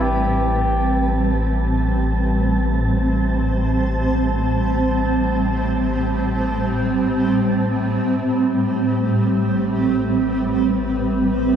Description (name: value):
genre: ambient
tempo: free time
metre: none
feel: none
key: A minor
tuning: A4 = 436 Hz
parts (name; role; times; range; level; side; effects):
- warm flugelhorn; melody; 0.0-1.2 s; G4; -25 LUFS; left 1 dB; shimmer reverb, analog delay
- granular cloud pad; sustained chords; 0.0-11.6 s; A2 to C5; -19 LUFS; right 1 dB; built-in reverb, shimmer reverb
- round analog bass; bass; 0.0-11.6 s; A1; -23 LUFS; equal; none
- wind-like tuned noise texture; texture; 0.0-8.0 s; A5; -30 LUFS; right 2 dB; built-in reverb, shimmer reverb
room: wet plate reverb, RT60 2.7 s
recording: echo-heavy mix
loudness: -17 LUFS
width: side -8 dB against mid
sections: 0.0-8.0 A section; 8.0-11.6 B section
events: fade-in on synth texture 0.0-8.0; filter sweep on ambient pad 0.0-8.0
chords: 0.0 Am9